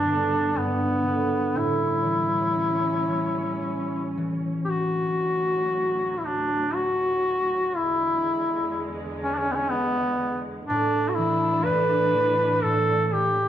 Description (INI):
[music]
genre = celtic folk, Celtic slow air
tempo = 54-62 BPM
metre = 3/4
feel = rubato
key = A mixolydian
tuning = A4 = 440 Hz
[part]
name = clear duduk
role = melody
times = 0.0-13.5 s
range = B3 to B4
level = -23 LUFS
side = left 1 dB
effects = none
[part]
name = concert harp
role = accompaniment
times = 0.0-13.5 s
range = G2 to C#4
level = -27 LUFS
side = right 2 dB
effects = none
[part]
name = muted studio string section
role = sustained chords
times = 0.0-13.5 s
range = D2 to D4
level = -33 LUFS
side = right 2 dB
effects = none
[sound]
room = moderate recital hall reverb, RT60 1.5 s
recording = none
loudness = -22 LUFS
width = side -10 dB against mid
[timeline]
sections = 0.0-4.7 A section; 4.7-13.5 B section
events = none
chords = 0.0 G; 1.5 A7; 4.7 D; 7.8 E7; 10.7 Asus4